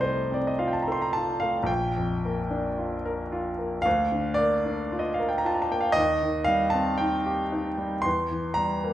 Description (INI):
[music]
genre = classical, romantic nocturne for solo piano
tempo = 53-59 BPM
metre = 4/4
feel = rubato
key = Bb major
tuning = A4 = 440 Hz
[part]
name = clear grand piano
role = solo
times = 0.0-8.9 s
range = Bb1 to C6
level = -24 LUFS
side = equal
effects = none
[sound]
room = wet recital hall reverb, RT60 1.3 s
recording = minimal, uncompressed stereo recording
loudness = -24 LUFS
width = side -12 dB against mid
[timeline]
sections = 0.0-8.9 A section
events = none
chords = 0.0 F/C; 1.7 Bb; 3.9 Bb/D; 6.0 Cm/Eb; 8.1 C7/E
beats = 0.59 | 1.69 2.77 3.85 4.92 | 5.98 7.01 8.06